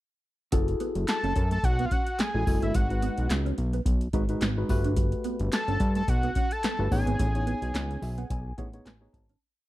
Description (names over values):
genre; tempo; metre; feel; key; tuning
early-eighties boogie funk; 108 BPM; 4/4; swing 56% on 16ths; F# dorian; A4 = 439 Hz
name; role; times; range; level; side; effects
tine electric piano; accompaniment; 0.5-9.4 s; G#3 to A5; -32 LUFS; left 2 dB; lush chorus
mellow electric guitar; riff; 0.5-9.4 s; G3 to F#4; -36 LUFS; right 6 dB; ensemble chorus
fat analog bass; bass; 0.5-9.4 s; F#1 to G2; -28 LUFS; equal; none
electro analog drum machine; drums; 0.5-9.4 s; handclaps, hi-hat, kick drum, snare drum; -28 LUFS; equal; none
fat analog lead; melody; 1.1-8.5 s; E5 to A5; -31 LUFS; left 1 dB; slapback echo
room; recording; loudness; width
little or no reverb; dry, close 1970s-style studio recording; -24 LUFS; side -16 dB against mid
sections
0.5-9.4 verse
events
fade-out 7.2-9.4; tine electric piano fill 7.7-9.4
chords
0.5 F#m9; 2.7 G#m7; 4.7 Gmaj9; 6.9 Amaj9#11